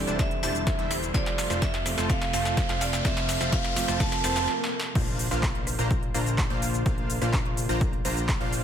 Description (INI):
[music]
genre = EDM, festival progressive house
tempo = 126 BPM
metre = 4/4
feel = straight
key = unclear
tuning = A4 = 438 Hz
[part]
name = vibraphone with hard mallets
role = melody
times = 0.0-4.5 s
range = C5 to A5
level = -31 LUFS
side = right 4 dB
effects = tape echo
[part]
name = dark concert grand piano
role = accompaniment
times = 0.0-5.0 s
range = C3 to C4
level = -35 LUFS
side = right 3 dB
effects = sidechain pumping, tape echo
[part]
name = lush unison pad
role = sustained chords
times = 0.0-8.6 s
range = C3 to C5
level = -37 LUFS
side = left 1 dB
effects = none
[part]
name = supersaw stab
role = riff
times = 0.0-8.6 s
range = G3 to Bb5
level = -32 LUFS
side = equal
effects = sidechain pumping, tape echo
[part]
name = fat analog bass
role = bass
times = 0.0-8.6 s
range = E1 to Bb1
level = -32 LUFS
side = equal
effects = sidechain pumping
[part]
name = riser, swell and impact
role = sound effects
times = 0.3-6.9 s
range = none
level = -35 LUFS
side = left 1 dB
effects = none
[part]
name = big-room dance drum kit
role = drums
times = 0.1-8.6 s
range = crash cymbal, handclaps, hi-hat, rim click, shaker, snare drum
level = -31 LUFS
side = equal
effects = overdrive, high-pass filter on snare, high-pass filter on hats, high-pass filter on perc, high-pass filter on cymbals, high-pass filter on room
[part]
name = electronic kick drum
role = drums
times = 0.2-8.4 s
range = none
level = -28 LUFS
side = equal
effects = overdrive
[sound]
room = moderate digital room reverb, RT60 1.1 s, digital ambience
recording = none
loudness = -24 LUFS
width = side -9 dB against mid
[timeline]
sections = 0.0-5.0 A section; 5.0-8.6 B section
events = build-up 0.0-5.0; drum fill 0.0-4.5, 4.5-5.0; riser 0.3-4.5; swell 4.0-5.0; stop 4.5-5.0; drop 5.0-8.6; impact 5.0-6.9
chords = 0.0 Cadd9/E; 1.1 F; 5.0 Bbadd9